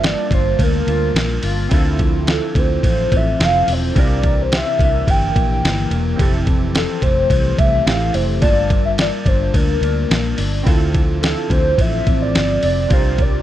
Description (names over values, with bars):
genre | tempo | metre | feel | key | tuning
indie pop, bedroom pop | 107 BPM | 4/4 | straight | unclear | A4 = 441 Hz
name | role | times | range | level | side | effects
warbly nostalgic lead | melody | 0.0-13.4 s | A4 to G5 | -20 LUFS | equal | lush chorus, tape echo
electric guitar through a small old amp | accompaniment | 0.0-13.4 s | F2 to A4 | -24 LUFS | left 3 dB | lush chorus, vibrato effect
warm analog keys | accompaniment | 0.0-13.4 s | Bb3 to A5 | -27 LUFS | right 4 dB | chorus, phaser, cassette tape
vintage muted fingered electric bass | bass | 0.0-13.4 s | E1 to D2 | -20 LUFS | equal | none
lo-fi sampler-style drum kit | drums | 0.0-13.3 s | hi-hat, kick drum, ride cymbal, snare drum | -18 LUFS | equal | none
room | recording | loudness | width
light reverb | dark, warm production | -14 LUFS | side -12 dB against mid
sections
0.0-13.4 A section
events
none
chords
0.0 Gm9; 1.7 Dm9; 4.0 C9; 6.2 Fmaj7; 8.4 Gm9; 10.7 Dm9; 12.9 C7sus4